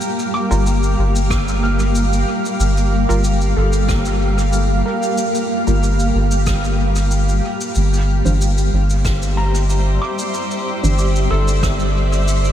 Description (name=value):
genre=ambient dub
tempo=93 BPM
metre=4/4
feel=swing 53% on 16ths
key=G dorian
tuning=A4 = 438 Hz
part: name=granular cloud pad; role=sustained chords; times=0.0-12.5 s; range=G3 to F5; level=-20 LUFS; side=equal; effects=built-in reverb, wide subtle chorus
part: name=felt-muted upright piano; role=arpeggios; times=0.0-12.5 s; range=A4 to F6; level=-29 LUFS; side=equal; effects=analog delay
part: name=shaker and rim click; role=drums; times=0.0-12.5 s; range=none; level=-28 LUFS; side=equal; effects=studio reverb, dub echo
part: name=filtered dub chord stab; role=stabs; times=0.5-11.0 s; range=E3 to C5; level=-28 LUFS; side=right 2 dB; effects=none
part: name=soft dub sub bass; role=bass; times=0.5-12.5 s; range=G1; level=-16 LUFS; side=equal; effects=none
part: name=electronic kick drum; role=drums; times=1.3-11.8 s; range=none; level=-24 LUFS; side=equal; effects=none
room=light reverb, small room reverb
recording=none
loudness=-15 LUFS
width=side -10 dB against mid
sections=0.0-12.5 A section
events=none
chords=0.0 Gm7; 7.8 Cadd9/G